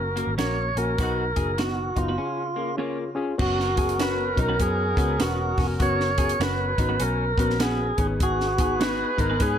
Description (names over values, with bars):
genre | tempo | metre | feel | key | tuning
uptempo 1960s-style soul | 100 BPM | 4/4 | swing 63% on 8ths | F# major | A4 = 440 Hz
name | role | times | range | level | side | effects
tonewheel organ | melody | 0.0-9.6 s | E#4 to C#5 | -26 LUFS | right 2 dB | overdrive, stopped rotary speaker, tape echo
reed electric piano | accompaniment | 0.0-9.6 s | G#2 to G#4 | -30 LUFS | left 3 dB | overdrive
electric guitar through a small old amp | riff | 0.0-9.6 s | A#3 to G#4 | -34 LUFS | left 8 dB | none
vintage muted picked electric bass | bass | 0.0-9.6 s | E1 to G#2 | -28 LUFS | equal | none
compact cocktail drum kit | drums | 0.2-9.6 s | crash cymbal, hi-hat, kick drum, snare drum | -27 LUFS | equal | none
clean electric guitar | stabs | 0.4-9.4 s | A#3 to C#5 | -32 LUFS | right 7 dB | wide subtle chorus
mellow horn section | second line | 1.0-9.6 s | B3 to B4 | -33 LUFS | equal | none
room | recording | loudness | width
small room ambience | none | -22 LUFS | side -9 dB against mid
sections
0.0-3.4 A section; 3.4-9.6 B section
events
band accent 1.0-3.4; break 2.2-3.4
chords
0.0 F#; 1.0 B; 2.2 C#; 3.4 F#sus4; 7.9 G#m